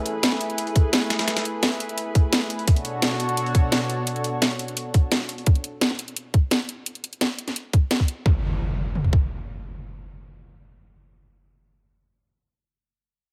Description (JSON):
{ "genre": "liquid drum and bass", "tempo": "172 BPM", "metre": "4/4", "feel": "straight", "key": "unclear", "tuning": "A4 = 438 Hz", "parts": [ { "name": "lush unison pad", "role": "sustained chords", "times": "0.0-5.4 s", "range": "B2 to C#5", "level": "-30 LUFS", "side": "equal", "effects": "chorus" }, { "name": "drum and bass drum kit", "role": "drums", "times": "0.1-8.2 s", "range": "hi-hat, snare drum", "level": "-27 LUFS", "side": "equal", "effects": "overdrive" }, { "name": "dusty soul sampler-style drum kit", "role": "drums", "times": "0.1-5.5 s", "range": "hi-hat, snare drum", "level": "-31 LUFS", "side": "equal", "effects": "high-pass filter on hats, high-pass filter on snare" }, { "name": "drum and bass drum kit", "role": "drums", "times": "0.8-9.2 s", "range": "kick drum, toms", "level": "-20 LUFS", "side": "equal", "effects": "overdrive" }, { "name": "impact", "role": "sound effects", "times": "8.3-12.0 s", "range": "none", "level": "-31 LUFS", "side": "equal", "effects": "none" } ], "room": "light reverb", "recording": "none", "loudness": "-23 LUFS", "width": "mono", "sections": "0.0-8.3 A section; 8.3-11.0 B section", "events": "none", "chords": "0.0 F#m11 (rootless); 2.7 Bm9; 8.3 N.C." }